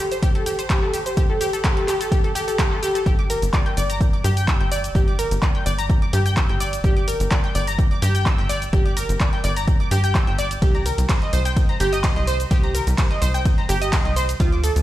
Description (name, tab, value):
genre	progressive house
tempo	127 BPM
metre	4/4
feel	straight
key	G minor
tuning	A4 = 436 Hz
part	analog pluck	arpeggios	0.0-14.7 s	F4 to Bb6	-24 LUFS	equal	chorus, sidechain pumping, dub echo
part	deep house drum kit	drums	0.1-14.8 s	cabasa, handclaps, hi-hat, ride cymbal	-28 LUFS	equal	overdrive, sidechain pumping on hats, sidechain pumping on perc, sidechain pumping on cymbals
part	electronic kick drum	drums	0.2-14.5 s	none	-20 LUFS	equal	overdrive
part	tight sequencer bass	bass	3.1-14.8 s	G1 to G2	-22 LUFS	equal	sidechain pumping
room	light reverb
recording	played on a big sound system in a bare room, large studio reverb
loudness	-18 LUFS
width	side -14 dB against mid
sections	0.0-3.1 A section; 3.1-14.8 B section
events	build-up 0.0-3.1; drop 3.1-14.8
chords	0.0 Gsus2; 3.1 Gm; 10.6 Cm7